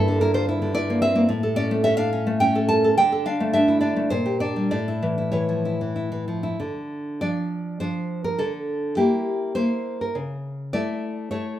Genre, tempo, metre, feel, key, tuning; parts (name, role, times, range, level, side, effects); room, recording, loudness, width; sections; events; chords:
romantic piece for solo classical guitar; 96-112 BPM; 3/4; rubato; D minor; A4 = 440 Hz
nylon-string guitar; solo; 0.0-11.6 s; G2 to A5; -21 LUFS; equal
moderate large studio reverb, RT60 1.1 s; band playing live in one room; -21 LUFS; side -12 dB against mid
0.0-6.6 A section; 6.6-11.6 B section
0.0 Em7b5/G; 1.3 A; 3.0 D5; 4.1 Gm/Bb; 4.7 A; 6.6 Dm; 8.4 Em7b5/D; 10.1 A/C#